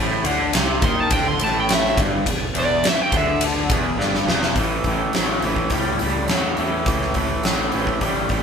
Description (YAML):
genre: blues rock power trio and southern rock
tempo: 104 BPM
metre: 4/4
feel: straight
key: A mixolydian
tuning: A4 = 440 Hz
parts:
  - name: overdriven tonewheel organ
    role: sustained chords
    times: 0.0-8.4 s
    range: C#4 to D5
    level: -30 LUFS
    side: equal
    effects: slow rotary speaker, chorus vibrato
  - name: raw garage guitar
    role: riff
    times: 0.0-8.4 s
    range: E2 to G3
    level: -22 LUFS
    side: equal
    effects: overdrive
  - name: fuzz fingered electric bass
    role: bass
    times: 0.0-8.4 s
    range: E1 to E2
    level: -28 LUFS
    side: equal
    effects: overdrive
  - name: huge arena drum kit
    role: drums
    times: 0.2-8.4 s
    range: hi-hat, kick drum, ride cymbal, snare drum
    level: -22 LUFS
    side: equal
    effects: none
  - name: fuzz lead guitar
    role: melody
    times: 0.8-3.4 s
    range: D5 to B#5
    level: -21 LUFS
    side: right 1 dB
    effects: distortion
room: moderate studio ambience, RT60 0.5 s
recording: band playing live in one room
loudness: -18 LUFS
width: side -6 dB against mid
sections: 0.0-4.6 A section; 4.6-8.4 B section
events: lead electric guitar solo 0.0-4.6; drum fill 4.0-4.6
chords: 0.0 A7#9; 2.3 E7#9; 4.6 A7#9